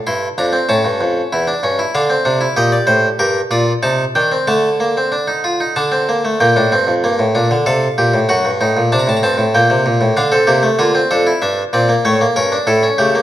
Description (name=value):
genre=classical, baroque-style 3-part fugue for harpsichord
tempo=96 BPM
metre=3/4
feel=straight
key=G minor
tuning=A4 = 440 Hz
part: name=harpsichord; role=solo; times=0.0-13.2 s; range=E2 to C6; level=-12 LUFS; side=equal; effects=none
room=moderate recital hall reverb, RT60 1.3 s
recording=none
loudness=-12 LUFS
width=side -13 dB against mid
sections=0.0-6.4 A section; 6.4-13.2 B section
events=none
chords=0.1 Edim/G; 0.7 A; 1.9 Dm; 2.6 Gm; 3.8 Cm; 4.5 D5; 6.4 Gm; 7.7 Gm11; 8.3 D7/F#; 9.5 Gm/Bb; 10.2 Dm; 11.4 Em7b5/G; 12.1 A7